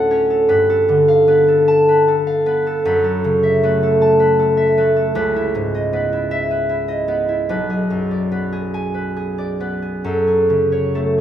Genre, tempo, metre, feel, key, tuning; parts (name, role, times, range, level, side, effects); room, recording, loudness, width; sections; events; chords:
classical, solo harp piece; 44-53 BPM (dotted quarters); 6/8; rubato; A4 = 440 Hz
concert harp; solo; 0.0-11.2 s; B1 to C#6; -14 LUFS; equal
moderate scoring stage reverb, RT60 1.7 s; -14 LUFS; side -10 dB against mid
0.0-11.2 A section
0.0 Dmaj7; 0.5 G9; 2.8 F#m7; 5.2 C#m9; 7.5 Bm6; 10.0 F#madd9